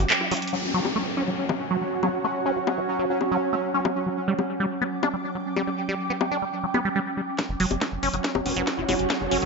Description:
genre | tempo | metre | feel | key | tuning
psychedelic trance | 140 BPM | 4/4 | straight | unclear | A4 = 439 Hz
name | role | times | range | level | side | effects
vowel-sweep wobble bass | second line | 0.0-0.4, 8.5-9.5 s | B3 to F#4 | -36 LUFS | left 2 dB | chorus, cassette tape, sidechain pumping, high-pass filter, tape echo
pulsing gated texture | sustained chords | 0.0-9.5 s | F#3 to C#4 | -30 LUFS | equal | chorus, built-in reverb, sidechain pumping
liquid acid bass | riff | 0.0-9.4 s | E3 to D4 | -28 LUFS | equal | phaser, auto-pan, sidechain pumping, ping-pong delay
tight sequencer bass | bass | 0.0-0.1, 7.5-9.5 s | E1 to F#1 | -30 LUFS | equal | none
ethereal airy pad | texture | 0.0-9.5 s | F#4 to D6 | -30 LUFS | right 4 dB | ensemble chorus, built-in reverb, sidechain pumping
drum and bass drum kit | drums | 0.1-9.5 s | bongos, handclaps, hi-hat, snare drum | -26 LUFS | left 4 dB | none
downlifter and riser | sound effects | 0.5-4.0, 8.2-9.5 s | none | -34 LUFS | left 1 dB | none
electronic kick drum | drums | 7.4-9.2 s | none | -30 LUFS | equal | high-pass filter on kick, high-pass filter on room
room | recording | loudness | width
moderate plate reverb, RT60 1.9 s, digital ambience | nothing above 7.7 kHz | -23 LUFS | side -3 dB against mid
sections
0.5-7.4 A section; 7.4-9.5 B section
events
break 0.1-0.5; band accent 0.1; drum fill 0.3, 7.4-9.5; filter sweep on acid bass 0.5-7.4, 7.4-9.5; build-up 7.4-9.5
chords
0.0 G5; 0.5 F#5; 4.0 G5; 7.4 F#5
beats
0.10 | 0.53 0.96 1.39 1.81 | 2.24 2.67 3.10 3.53 | 3.96 4.39 4.82 5.24 | 5.67 6.10 6.53 6.96 | 7.39 7.82 8.24 8.67 | 9.10

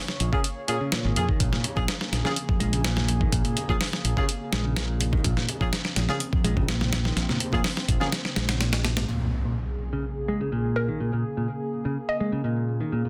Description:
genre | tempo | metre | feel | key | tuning
breakbeat, breaks | 125 BPM | 4/4 | straight | Bb minor | A4 = 440 Hz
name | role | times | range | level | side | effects
warbly tape-like pad | sustained chords | 0.0-13.1 s | Db3 to Db5 | -37 LUFS | equal | chorus, built-in reverb, sidechain pumping
dusty soul sampler-style drum kit | drums | 0.1-9.1 s | hi-hat, kick drum, snare drum | -28 LUFS | equal | none
fingered electric bass | bass | 0.2-9.0 s | Ab1 to F2 | -29 LUFS | equal | none
picked electric bass | riff | 0.3-13.1 s | Ab2 to Ab3 | -32 LUFS | equal | tube saturation, low-pass filter, tape echo
warm horn section | stabs | 0.3-8.1 s | Bb3 to Ab4 | -34 LUFS | equal | tape echo
congas and bongos | percussion | 1.2-9.1 s | none | -39 LUFS | equal | none
impact | sound effects | 9.1-11.0 s | none | -34 LUFS | equal | none
mallet-like synth pluck | melody | 10.8-12.8 s | Bb4 to Eb5 | -33 LUFS | equal | chorus, small speaker sound, tape echo
room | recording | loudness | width
moderate studio reverb, RT60 0.6 s | dense, heavily limited modern master | -26 LUFS | mono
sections
0.0-9.1 A section; 9.1-13.1 B section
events
impact 9.1-11.0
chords
0.0 Bbm7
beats
0.45 0.93 | 1.41 1.89 2.37 2.85 | 3.33 3.81 4.29 4.76 | 5.25 5.72 6.21 6.68 | 7.17 7.64 8.12 8.61 | 9.09 9.56 10.04 10.53 | 11.01 11.48 11.96 12.45 | 12.93

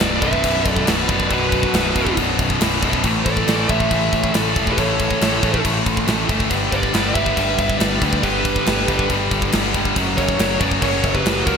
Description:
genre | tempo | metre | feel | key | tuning
heavy metal | 139 BPM | 4/4 | straight | B minor | A4 = 440 Hz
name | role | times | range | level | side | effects
high-gain lead guitar | melody | 0.0-11.6 s | A#4 to E5 | -24 LUFS | right 1 dB | distortion
high-gain lead guitar | second line | 0.0-11.6 s | F#4 to C#5 | -29 LUFS | right 4 dB | distortion
muted studio string section | sustained chords | 0.0-11.6 s | A#2 to F#5 | -32 LUFS | left 2 dB | none
distorted electric guitar | riff | 0.0-11.6 s | B1 to A3 | -22 LUFS | left 12 dB | overdrive
heavy high-gain guitar | riff | 0.0-11.6 s | B1 to A3 | -23 LUFS | right 13 dB | distortion
growling picked electric bass | bass | 0.0-11.6 s | B0 to D2 | -24 LUFS | equal | overdrive
tight metal drum kit | drums | 0.0-11.6 s | crash cymbal, kick drum, snare drum | -22 LUFS | equal | gated reverb
room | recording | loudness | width
moderate lush hall reverb, RT60 1.6 s, small room ambience | bright 1980s-style digital production | -16 LUFS | side -6 dB against mid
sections
0.0-11.6 A section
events
none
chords
0.0 Bm; 3.0 A; 6.5 G; 10.0 F#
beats
0.01 0.44 0.88 | 1.31 1.74 2.18 2.61 | 3.04 3.48 3.91 4.34 | 4.78 5.21 5.64 6.08 | 6.51 6.94 7.37 7.81 | 8.24 8.67 9.10 9.53 | 9.96 10.39 10.83 11.26

